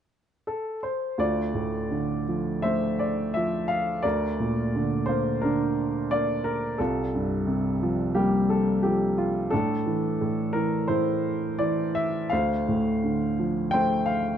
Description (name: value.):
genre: classical, lyrical solo piano.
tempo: 86 BPM.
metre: 4/4.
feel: uneven beats, rubato.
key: D minor.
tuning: A4 = 440 Hz.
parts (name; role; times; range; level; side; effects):
warm baby grand piano; solo; 0.5-14.4 s; C2 to G5; -23 LUFS; equal; none.
room: moderate recital hall reverb, RT60 1.7 s.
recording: dark, warm production, nothing above 10.7 kHz.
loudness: -23 LUFS.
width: side -9 dB against mid.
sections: 0.0-1.2 A section; 1.2-14.4 B section.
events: none.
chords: 0.0 N.C.; 1.2 Dm7; 4.0 Bbadd9/D; 6.8 C7sus4; 9.5 Asus4; 12.3 Dm7.